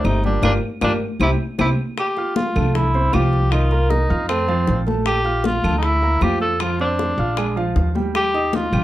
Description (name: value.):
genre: Afro-Cuban jazz.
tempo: 155 BPM.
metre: 4/4.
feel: straight.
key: F major.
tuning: A4 = 440 Hz.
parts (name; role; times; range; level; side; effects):
breathy tenor saxophone; melody; 0.0-8.8 s; C4 to A4; -21 LUFS; equal; none.
bright trombone; second line; 0.0-1.7 s; Bb2 to C3; -28 LUFS; left 3 dB; none.
warm grand piano; accompaniment; 0.0-8.8 s; Eb3 to F6; -24 LUFS; right 4 dB; none.
upright bass; bass; 0.0-8.8 s; G1 to F2; -21 LUFS; equal; none.
claves; percussion; 0.0-8.8 s; none; -31 LUFS; right 1 dB; none.
congas; percussion; 0.0-8.8 s; none; -27 LUFS; left 3 dB; none.
bongos; percussion; 0.1-8.7 s; none; -31 LUFS; left 4 dB; none.
room: moderate club reverb, RT60 0.5 s.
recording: dark, warm production.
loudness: -17 LUFS.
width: side -14 dB against mid.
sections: 0.0-2.0 A section; 2.0-8.8 B section.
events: band accent 0.4-2.0.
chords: 0.4 Gm7; 1.2 C; 2.0 Fmaj7; 3.5 Cm7; 4.3 F; 5.1 Bbmaj7; 6.6 F5; 7.4 Bb5; 8.2 Eb.